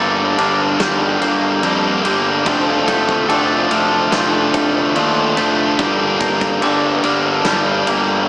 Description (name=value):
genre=post-rock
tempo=72 BPM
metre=4/4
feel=straight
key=G minor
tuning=A4 = 439 Hz
part: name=glockenspiel with soft plastic mallets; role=arpeggios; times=0.0-8.3 s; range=D6 to G6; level=-24 LUFS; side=right 1 dB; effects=digital delay
part: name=twangy electric guitar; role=arpeggios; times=0.0-8.3 s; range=G2 to A4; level=-22 LUFS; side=equal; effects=analog chorus, digital delay
part: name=distorted electric guitar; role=riff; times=0.0-8.3 s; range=G2 to F4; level=-16 LUFS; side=left 1 dB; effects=overdrive
part: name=overdriven electric guitar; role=riff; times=0.0-8.3 s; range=G2 to D4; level=-21 LUFS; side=right 2 dB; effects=phaser
part: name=growling fingered electric bass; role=bass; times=0.0-8.3 s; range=F1 to F2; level=-24 LUFS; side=equal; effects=overdrive
part: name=huge arena drum kit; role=drums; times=0.4-8.1 s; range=kick drum, ride cymbal, snare drum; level=-24 LUFS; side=equal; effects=none
room=light reverb, small room ambience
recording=small speaker sound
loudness=-13 LUFS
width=side -23 dB against mid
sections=0.0-8.3 A section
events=none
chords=0.0 Gmadd9; 2.5 Dm/F; 5.8 Gmadd9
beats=0.79 1.63 | 2.46 3.29 4.12 4.95 | 5.79 6.62 7.45 8.28